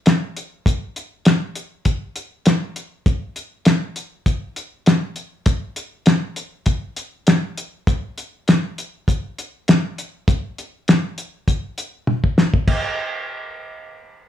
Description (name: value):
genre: blues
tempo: 100 BPM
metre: 4/4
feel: swing 54% on 16ths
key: none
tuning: none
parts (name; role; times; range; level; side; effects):
- cloth-damped thuddy drum kit; drums; 0.1-12.8 s; crash cymbal, hi-hat, kick drum, snare drum, toms; -16 LUFS; left 1 dB; none
room: wet small room reverb, RT60 0.5 s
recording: studio ambience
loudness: -18 LUFS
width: side -11 dB against mid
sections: 0.0-12.7 A section; 12.7-14.3 B section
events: drum fill 12.1-12.7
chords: none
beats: 0.05 | 0.66 1.26 1.86 2.46 | 3.06 3.67 4.27 4.87 | 5.47 6.07 6.67 7.27 | 7.87 8.47 9.07 9.68 | 10.28 10.88 11.48 12.08 | 12.68